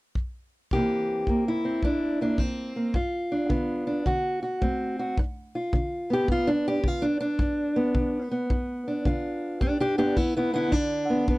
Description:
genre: acoustic country blues, solo or duo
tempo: 108 BPM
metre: 4/4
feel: swing 65% on 8ths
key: G mixolydian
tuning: A4 = 440 Hz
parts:
  - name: kick drum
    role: drums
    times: 0.2-11.4 s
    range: none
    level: -28 LUFS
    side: equal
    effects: none
  - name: fingerpicked steel-string acoustic guitar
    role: melody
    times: 0.7-11.4 s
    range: G2 to G4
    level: -24 LUFS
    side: equal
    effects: none
room: little or no reverb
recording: dry, close 1970s-style studio recording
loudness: -24 LUFS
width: side -20 dB against mid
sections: 0.7-5.2 A section; 5.2-11.4 B section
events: steel-string acoustic guitar solo 5.2-11.4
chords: 0.0 N.C.; 0.7 C7; 2.9 G7; 4.1 D7; 5.2 G7

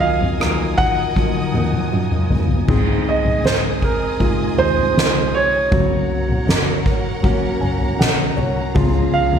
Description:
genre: pop ballad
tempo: 79 BPM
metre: 4/4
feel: straight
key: unclear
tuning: A4 = 441 Hz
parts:
  - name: warm concert grand piano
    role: melody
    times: 0.0-9.4 s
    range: Bb4 to Gb5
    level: -20 LUFS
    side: right 4 dB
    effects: slapback echo
  - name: felt-muted upright piano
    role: accompaniment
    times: 0.0-9.4 s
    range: Ab2 to Ab5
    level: -24 LUFS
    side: left 3 dB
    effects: none
  - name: warm studio string section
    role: sustained chords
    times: 0.0-9.4 s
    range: Db4 to Eb6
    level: -29 LUFS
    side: right 1 dB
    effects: none
  - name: fingerpicked steel-string acoustic guitar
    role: arpeggios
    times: 0.0-9.4 s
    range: Ab2 to Bb4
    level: -28 LUFS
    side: right 7 dB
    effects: slapback echo, ping-pong delay
  - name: rich double bass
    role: bass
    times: 0.0-9.4 s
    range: Gb1 to Gb2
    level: -25 LUFS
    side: equal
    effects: none
  - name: soft-mallet drum kit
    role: drums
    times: 0.2-9.4 s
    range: crash cymbal, kick drum, rim click, snare drum, toms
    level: -19 LUFS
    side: left 1 dB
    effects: none
room: moderate concert hall reverb, RT60 2.0 s, small room ambience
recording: big arena sound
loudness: -15 LUFS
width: side -8 dB against mid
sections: 0.0-2.7 A section; 2.7-9.4 B section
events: drum fill 1.2-2.7; felt piano fill 7.2-8.8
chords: 0.0 Ebmadd9; 2.7 Ab; 5.7 Gb; 8.8 Db

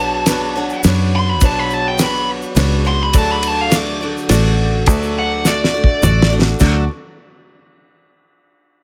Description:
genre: folk rock and heartland rock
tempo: 104 BPM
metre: 3/4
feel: straight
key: D major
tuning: A4 = 439 Hz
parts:
  - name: dark smooth lead guitar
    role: melody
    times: 0.0-6.3 s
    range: D5 to D6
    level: -21 LUFS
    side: equal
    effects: overdrive
  - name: bright upright piano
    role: accompaniment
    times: 0.0-6.9 s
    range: D4 to E5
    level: -28 LUFS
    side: equal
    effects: none
  - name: picked twelve-string acoustic guitar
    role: accompaniment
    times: 0.0-6.8 s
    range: B2 to D5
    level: -25 LUFS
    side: equal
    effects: none
  - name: fingered electric bass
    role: bass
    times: 0.0-6.9 s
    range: A1 to F#2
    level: -20 LUFS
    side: equal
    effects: none
  - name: damped 70s drum kit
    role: drums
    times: 0.3-6.7 s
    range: crash cymbal, kick drum, ride cymbal, snare drum, toms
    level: -20 LUFS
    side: equal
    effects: none
  - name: tube shaker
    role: percussion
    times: 0.3-6.9 s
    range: none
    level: -29 LUFS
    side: equal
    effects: none
room: small room ambience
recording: none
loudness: -15 LUFS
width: mono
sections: 0.0-6.6 A section; 6.6-8.3 B section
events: lead electric guitar solo 0.0-6.6; drum fill 5.4-6.6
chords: 0.0 Bmadd9; 3.1 D

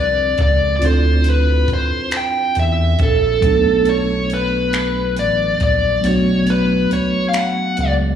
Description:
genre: slow six-eight R&B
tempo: 46 BPM (dotted quarters)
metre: 6/8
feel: straight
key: unclear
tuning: A4 = 440 Hz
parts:
  - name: dark smooth lead guitar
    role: melody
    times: 0.0-7.9 s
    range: A4 to G5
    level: -18 LUFS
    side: equal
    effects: overdrive, slapback echo, tape echo
  - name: mellow tine electric piano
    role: accompaniment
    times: 0.0-8.2 s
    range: F3 to A4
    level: -20 LUFS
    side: right 1 dB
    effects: medium stereo tremolo, slapback echo
  - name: round analog bass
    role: bass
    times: 0.0-8.2 s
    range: A1 to E2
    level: -18 LUFS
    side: right 1 dB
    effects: none
  - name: compact cocktail drum kit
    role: drums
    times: 0.4-8.0 s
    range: finger snaps, hi-hat, kick drum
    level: -22 LUFS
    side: equal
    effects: none
room: moderate club reverb, RT60 0.5 s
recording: live gig heard through the venue's PA, recital hall reverb, studio ambience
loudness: -14 LUFS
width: side -9 dB against mid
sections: 0.0-8.2 A section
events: none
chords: 0.0 Dm9; 3.4 Bm9

